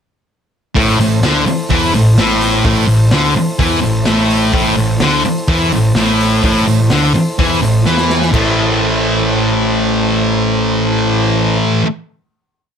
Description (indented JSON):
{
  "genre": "garage rock duo or trio",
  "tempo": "127 BPM",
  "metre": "4/4",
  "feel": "straight",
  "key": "A minor",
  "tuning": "A4 = 440 Hz",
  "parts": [
    { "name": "overdriven combo organ", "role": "sustained chords", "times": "0.8-11.6 s", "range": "E4 to C5", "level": "-23 LUFS", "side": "right 1 dB", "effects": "none" },
    { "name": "thick fuzz guitar", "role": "riff", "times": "0.8-11.9 s", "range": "A2 to A3", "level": "-12 LUFS", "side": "equal", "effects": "distortion" },
    { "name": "fuzz picked electric bass", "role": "bass", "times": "0.8-11.6 s", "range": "A1 to E2", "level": "-20 LUFS", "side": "equal", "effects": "overdrive" },
    { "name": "raw garage drum kit", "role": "drums", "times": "0.8-8.4 s", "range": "crash cymbal, hi-hat, kick drum, snare drum", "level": "-20 LUFS", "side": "equal", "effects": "none" }
  ],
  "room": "light reverb",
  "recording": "none",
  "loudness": "-11 LUFS",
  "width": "side -8 dB against mid",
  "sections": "0.8-8.3 riff; 8.3-12.1 final chord",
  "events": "drum fill 7.9-8.3",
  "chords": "0.8 Am"
}